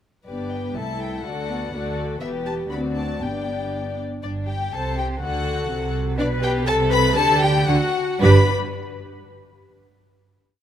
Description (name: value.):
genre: quick classical-period movement for string orchestra.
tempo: 111-126 BPM.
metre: 2/4.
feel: rubato.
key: G major.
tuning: A4 = 439 Hz.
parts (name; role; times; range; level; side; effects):
warm chamber violin section; melody; 0.3-8.5 s; D5 to B5; -26 LUFS; left 5 dB; none.
warm chamber violin section; second line; 0.3-8.5 s; D4 to E5; -26 LUFS; left 2 dB; none.
warm chamber viola section; accompaniment; 0.3-8.5 s; A3 to C5; -27 LUFS; equal; none.
dark chamber cello section; bass; 0.3-8.5 s; C2 to D3; -26 LUFS; right 2 dB; none.
dark chamber double bass section; bass; 0.3-8.5 s; E1 to D2; -25 LUFS; right 2 dB; none.
room: moderate concert hall reverb, RT60 2.4 s.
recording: none.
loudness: -19 LUFS.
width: side -10 dB against mid.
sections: 0.3-4.2 A section; 4.2-8.2 A section; 8.2-9.3 final chord.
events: slowing down 5.7-8.2.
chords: 0.3 G; 0.8 Am/C; 1.3 D; 2.2 Em; 2.7 D7; 3.2 G; 4.2 G5; 4.7 Am/C; 5.2 D; 6.2 G/B; 6.7 Am/C; 7.2 G5/D; 8.2 G5.